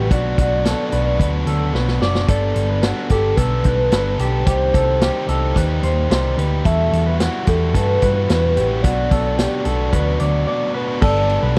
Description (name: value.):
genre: jangly indie pop.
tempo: 110 BPM.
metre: 4/4.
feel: straight.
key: unclear.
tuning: A4 = 440 Hz.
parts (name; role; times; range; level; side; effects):
warbly nostalgic lead; melody; 0.0-11.6 s; A4 to E5; -24 LUFS; equal; chorus, slapback echo.
biting overdriven guitar; accompaniment; 0.0-11.6 s; E2 to A4; -26 LUFS; equal; none.
electric guitar through a small old amp; arpeggios; 0.0-11.6 s; F#4 to D5; -28 LUFS; equal; slapback echo.
hollow-body short-scale picked electric bass; bass; 0.0-11.6 s; F#1 to G2; -22 LUFS; equal; none.
vintage drum kit; drums; 0.1-11.6 s; crash cymbal, hi-hat, kick drum, ride cymbal, snare drum; -21 LUFS; equal; none.
warbly lo-fi synth keys; accompaniment; 11.0-11.6 s; A4 to G5; -31 LUFS; equal; chorus.
room: light reverb.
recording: dry, close 1970s-style studio recording.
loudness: -18 LUFS.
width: mono.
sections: 0.0-11.0 A section.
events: drum fill 1.7-2.3; break 10.5-11.0.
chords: 0.1 Bm; 2.3 Gadd9; 4.5 Cm; 6.7 Emadd9; 8.8 Bm; 11.0 Gadd9.